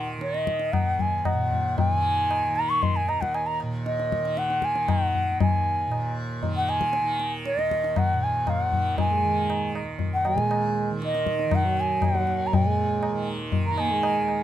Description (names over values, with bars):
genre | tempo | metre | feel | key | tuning
indian classical, Hindustani | 117 BPM | 7/4 | straight | unclear | A4 = 440 Hz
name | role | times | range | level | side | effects
bansuri | melody | 0.0-14.4 s | Eb5 to Db6 | -25 LUFS | equal | none
tanpura | drone | 0.0-14.4 s | Eb2 to Eb3 | -31 LUFS | right 2 dB | none
tabla | percussion | 0.2-14.4 s | none | -26 LUFS | left 2 dB | none
warm French horn | second line | 9.1-14.4 s | Eb3 to Bb3 | -29 LUFS | right 6 dB | none
room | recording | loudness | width
little or no reverb | close, detailed microphones | -22 LUFS | side -11 dB against mid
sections
0.0-14.4 A section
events
speeding up 0.0-14.4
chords
none